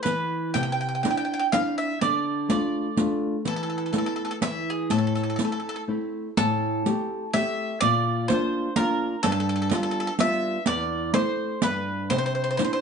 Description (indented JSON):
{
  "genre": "italian folk, Italian serenade",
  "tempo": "124 BPM",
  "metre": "3/4",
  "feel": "swing 55% on 8ths",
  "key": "A minor",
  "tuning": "A4 = 438 Hz",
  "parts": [
    { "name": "bowl-back mandolin", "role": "melody", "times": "0.0-12.8 s", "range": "G#4 to G5", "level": "-27 LUFS", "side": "right 2 dB", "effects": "plate reverb" },
    { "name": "nylon-string guitar", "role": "accompaniment", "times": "0.1-12.8 s", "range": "E2 to G4", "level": "-26 LUFS", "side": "left 1 dB", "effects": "none" },
    { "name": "riq", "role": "percussion", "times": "0.1-12.8 s", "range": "none", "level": "-27 LUFS", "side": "right 4 dB", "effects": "none" }
  ],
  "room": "wet studio reverb, RT60 0.6 s",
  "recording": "heard from further back in the room, nothing above 10.5 kHz",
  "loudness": "-23 LUFS",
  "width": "side -6 dB against mid",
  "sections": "0.0-6.4 A section; 6.4-12.8 A section",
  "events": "break 5.9-6.4",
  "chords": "0.1 N.C.; 0.6 Cadd9; 2.0 Dm; 3.4 Esus4; 4.4 N.C.; 4.9 Am; 6.4 Am7; 7.8 Bb; 9.2 G7; 10.7 Am/E; 11.6 N.C.; 12.1 Cadd9"
}